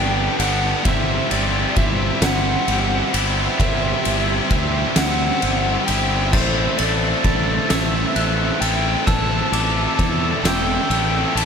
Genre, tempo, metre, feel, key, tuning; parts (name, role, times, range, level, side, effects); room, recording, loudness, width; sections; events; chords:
post-rock; 44 BPM (dotted quarters); 6/8; straight; A dorian; A4 = 440 Hz
overdriven slide guitar; melody; 0.0-11.4 s; C5 to A5; -25 LUFS; equal; slapback echo, analog delay
hand-pumped harmonium; sustained chords; 0.0-11.4 s; G4 to C6; -32 LUFS; left 1 dB
tight distorted guitar; riff; 0.0-11.4 s; G3 to A4; -25 LUFS; left 10 dB; distortion, slapback echo
tight distorted guitar; riff; 0.0-11.4 s; G3 to A4; -25 LUFS; right 10 dB; distortion, slapback echo
fuzz fingered electric bass; bass; 0.0-11.4 s; E1 to E2; -23 LUFS; equal; overdrive
oversized low-tuned drum kit; drums; 0.4-11.4 s; crash cymbal, kick drum, ride cymbal, snare drum; -21 LUFS; left 1 dB
glockenspiel with hard plastic mallets; arpeggios; 6.3-11.4 s; D6 to A6; -28 LUFS; right 3 dB; slapback echo, analog delay
moderate lush hall reverb, RT60 2.6 s; big arena sound; -16 LUFS; side -6 dB against mid
0.0-11.4 A section
0.0 Gadd9; 0.9 C/G; 6.3 Amadd9